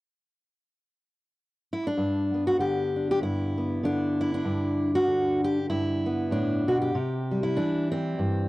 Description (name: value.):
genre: folk, solo fingerstyle acoustic guitar.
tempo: 97 BPM.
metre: 4/4.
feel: swing 58% on 8ths.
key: G major.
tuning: A4 = 438 Hz.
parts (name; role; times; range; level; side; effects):
fingerpicked steel-string acoustic guitar; solo; 1.7-8.5 s; G2 to G4; -24 LUFS; equal; none.
room: small room ambience.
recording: dry, close 1970s-style studio recording.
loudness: -24 LUFS.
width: side -18 dB against mid.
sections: 0.0-2.0 A section; 2.0-8.5 B section.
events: none.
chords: 0.0 N.C.; 2.0 G; 6.9 C.